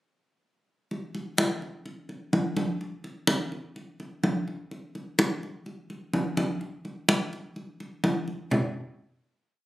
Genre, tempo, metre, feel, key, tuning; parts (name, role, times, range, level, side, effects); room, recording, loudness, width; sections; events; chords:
latin; 126 BPM; 4/4; straight
congas; percussion; 0.9-8.6 s; -26 LUFS; equal
wet studio ambience, RT60 0.5 s; recorded on a phone in the room, studio reverb, compression; -26 LUFS; side -16 dB against mid
0.9-8.5 A section; 8.5-9.7 final hit